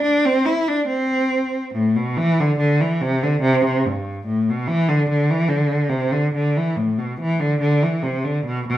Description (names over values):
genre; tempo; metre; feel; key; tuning
musette; 143 BPM; 3/4; straight; unclear; A4 = 440 Hz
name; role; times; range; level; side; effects
rich cello; solo; 0.0-8.8 s; G2 to E4; -17 LUFS; equal; none
room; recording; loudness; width
wet studio reverb, RT60 0.6 s; heard from further back in the room; -17 LUFS; side -13 dB against mid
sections
0.0-2.2 A section; 2.2-8.8 A section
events
none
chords
none